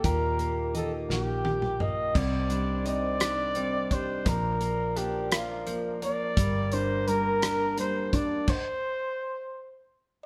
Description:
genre	six-eight pop ballad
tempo	57 BPM (dotted quarters)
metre	6/8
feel	straight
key	unclear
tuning	A4 = 439 Hz
part	warm flugelhorn	melody	0.0-9.9 s	F4 to Eb5	-32 LUFS	equal	none
part	warm concert grand piano	accompaniment	0.0-8.5 s	Bb2 to G5	-36 LUFS	equal	none
part	warm French horn section	sustained chords	0.0-8.5 s	Eb3 to D5	-40 LUFS	equal	none
part	direct-recorded clean electric guitar	arpeggios	0.0-8.6 s	F3 to G4	-39 LUFS	equal	none
part	vintage muted fingered electric bass	bass	0.0-8.4 s	G1 to Eb2	-36 LUFS	equal	none
part	damped 70s drum kit	drums	0.0-8.6 s	crash cymbal, hi-hat, kick drum, rim click, snare drum, toms	-32 LUFS	equal	none
room	moderate stone room reverb, RT60 1.0 s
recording	band playing live in one room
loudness	-28 LUFS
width	mono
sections	0.0-2.2 A section; 2.2-10.3 B section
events	drum fill 1.1-2.2; grand piano fill 1.1-2.2; stop 8.5-10.3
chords	0.0 Eb; 2.2 Cmadd9; 4.3 Bb; 6.4 Gm; 8.5 N.C.

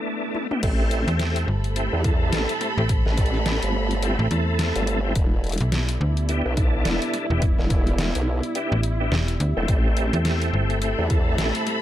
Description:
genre	glitch hop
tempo	106 BPM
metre	4/4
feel	swing 58% on 16ths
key	A minor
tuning	A4 = 441 Hz
part	tonewheel organ	stabs	0.0-11.8 s	A3 to A4	-28 LUFS	equal	chorus vibrato, fast rotary speaker, sidechain pumping, ping-pong delay
part	swell	sound effects	0.0-0.6 s	none	-32 LUFS	left 1 dB	none
part	dubstep drum kit	drums	0.3-11.8 s	crash cymbal, hi-hat, snare drum, toms	-29 LUFS	left 1 dB	none
part	dark analog pad	sustained chords	1.4-11.8 s	A3 to E5	-32 LUFS	right 2 dB	chorus, sidechain pumping
part	formant-sweep wobble bass	bass	0.6-11.5 s	E1 to E2	-24 LUFS	equal	chorus, overdrive
part	electronic kick drum	drums	0.6-11.2 s	none	-21 LUFS	equal	none
part	dark chamber string section	texture	0.6-11.8 s	E4 to B5	-32 LUFS	right 1 dB	sidechain pumping
part	slap-like FM bass	bass	1.1-11.0 s	E1 to E2	-22 LUFS	equal	none
room	little or no reverb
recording	none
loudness	-20 LUFS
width	side -12 dB against mid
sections	0.6-11.8 A section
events	break 0.0-0.6; swell 0.0-0.6; drum fill 0.3; drop 0.6-11.8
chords	0.0 Em7; 0.6 Am7; 5.2 Em7; 9.7 Am7

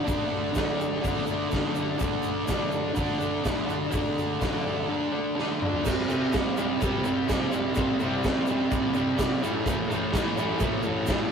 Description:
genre	garage rock duo or trio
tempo	125 BPM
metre	4/4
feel	straight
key	unclear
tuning	A4 = 440 Hz
part	fuzz guitar	riff	0.0-11.3 s	A2 to D4	-26 LUFS	right 1 dB	distortion
part	raw garage drum kit	drums	0.1-11.2 s	crash cymbal, hi-hat, kick drum, snare drum, toms	-29 LUFS	equal	none
part	egg shaker	percussion	0.1-11.2 s	none	-46 LUFS	right 5 dB	none
room	moderate booth ambience, RT60 0.2 s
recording	rough rehearsal-room recording, tube saturation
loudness	-24 LUFS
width	side -6 dB against mid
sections	0.0-5.9 A section; 5.9-11.3 B section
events	drum fill 5.4-5.9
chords	0.0 D5; 5.9 C5; 9.4 A5

